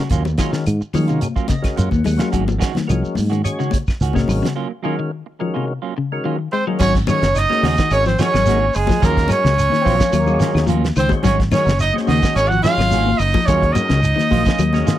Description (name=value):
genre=afrobeat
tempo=108 BPM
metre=4/4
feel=straight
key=Ab mixolydian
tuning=A4 = 440 Hz
part: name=percussive tonewheel organ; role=accompaniment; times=0.0-15.0 s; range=Eb3 to Gb5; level=-27 LUFS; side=left 1 dB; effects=slow rotary speaker, overdrive
part: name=electric guitar at the edge of break-up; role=arpeggios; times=0.0-15.0 s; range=C3 to Ab3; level=-23 LUFS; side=left 6 dB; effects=none
part: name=semi-hollow electric guitar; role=stabs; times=0.0-15.0 s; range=Eb3 to Gb4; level=-27 LUFS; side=right 9 dB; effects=none
part: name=fingered electric bass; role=bass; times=0.1-14.8 s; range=Gb1 to Eb3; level=-19 LUFS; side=equal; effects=none
part: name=damped 70s drum kit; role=drums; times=0.1-15.0 s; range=crash cymbal, hi-hat, kick drum, snare drum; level=-22 LUFS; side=right 1 dB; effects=none
part: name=shekere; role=percussion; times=0.1-15.0 s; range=none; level=-26 LUFS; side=right 2 dB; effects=none
part: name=congas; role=percussion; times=0.3-14.9 s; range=none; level=-24 LUFS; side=left 5 dB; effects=none
part: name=claves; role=percussion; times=0.4-14.7 s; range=none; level=-36 LUFS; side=left 8 dB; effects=none
part: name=clear trumpet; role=melody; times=6.5-15.0 s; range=Ab4 to Gb5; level=-19 LUFS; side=right 2 dB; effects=none
part: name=raspy tenor saxophone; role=second line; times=6.5-15.0 s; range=Ab3 to Gb4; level=-27 LUFS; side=right 4 dB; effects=none
part: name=warm trombone section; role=second line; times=9.8-10.8 s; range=Bb3 to C4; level=-26 LUFS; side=left 4 dB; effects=none
room=small room ambience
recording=dry, close 1970s-style studio recording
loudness=-15 LUFS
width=side -12 dB against mid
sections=0.0-6.8 A section; 6.8-15.0 B section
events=tonewheel organ fill 1.2-2.3; break 4.6-6.8; drum fill 14.6-15.0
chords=0.1 Ebm9; 2.3 Ab7sus4; 4.6 Ebm9; 6.8 Ab7sus4; 9.0 Ebm9; 11.2 Ab7sus4; 13.5 Ebm9